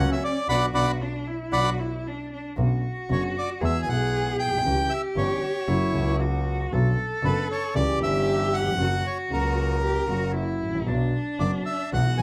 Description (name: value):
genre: tango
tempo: 116 BPM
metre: 4/4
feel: rubato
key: B minor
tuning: A4 = 440 Hz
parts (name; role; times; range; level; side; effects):
- bandoneon; melody; 0.0-12.2 s; A#4 to B5; -29 LUFS; equal; none
- warm cello; second line; 0.0-12.2 s; C#4 to A4; -32 LUFS; equal; none
- dark concert grand piano; accompaniment; 0.0-12.2 s; F#1 to G#4; -31 LUFS; equal; none
- bandoneon; stabs; 0.0-1.7 s; A#3 to F#4; -41 LUFS; equal; none
- clear double bass; bass; 0.0-12.2 s; F#1 to E2; -30 LUFS; equal; none
room: moderate large studio reverb, RT60 0.8 s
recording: none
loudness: -25 LUFS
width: mono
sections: 0.0-2.6 A section; 2.6-12.2 A section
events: band accent 0.5-2.6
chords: 0.5 Bm; 2.6 Bmadd9; 3.6 Eadd9; 4.7 C#dim; 5.7 F#; 6.7 Bm; 7.7 C#dim; 8.8 F#; 10.9 Bm